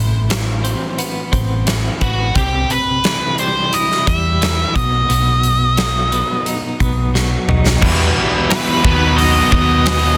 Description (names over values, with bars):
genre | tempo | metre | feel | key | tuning
quiet-loud alternative rock | 88 BPM | 4/4 | straight | unclear | A4 = 440 Hz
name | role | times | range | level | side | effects
twelve-string electric guitar | arpeggios | 0.0-7.8 s | A2 to E4 | -25 LUFS | equal | tremolo, digital delay
hollow-body short-scale picked electric bass | bass | 0.0-10.2 s | A1 to E2 | -20 LUFS | equal | none
huge arena drum kit | drums | 0.3-10.0 s | crash cymbal, hi-hat, kick drum, snare drum, toms | -21 LUFS | equal | soft clipping on snare
octave-fuzz lead guitar | melody | 2.0-10.2 s | F#4 to E5 | -20 LUFS | equal | distortion, digital delay
ensemble organ-string | sustained chords | 7.8-10.2 s | D#3 to F#5 | -30 LUFS | equal | none
distorted electric guitar | riff | 7.8-10.2 s | E2 to B3 | -23 LUFS | equal | distortion
sludgy distorted guitar | riff | 7.8-10.2 s | D#3 to E4 | -24 LUFS | equal | overdrive
thick fuzz guitar | riff | 7.8-10.2 s | E2 to B3 | -23 LUFS | equal | distortion
room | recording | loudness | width
little or no reverb | dense, heavily limited modern master | -16 LUFS | mono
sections
0.0-7.8 A section; 7.8-10.2 B section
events
drum fill 7.1-7.8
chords
0.0 Amadd9; 2.4 C; 4.7 B; 7.8 Em; 8.8 B/D#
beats
0.30 0.98 1.67 | 2.35 3.03 3.72 4.40 | 5.09 5.77 6.45 7.14 | 7.82 8.50 9.18 9.85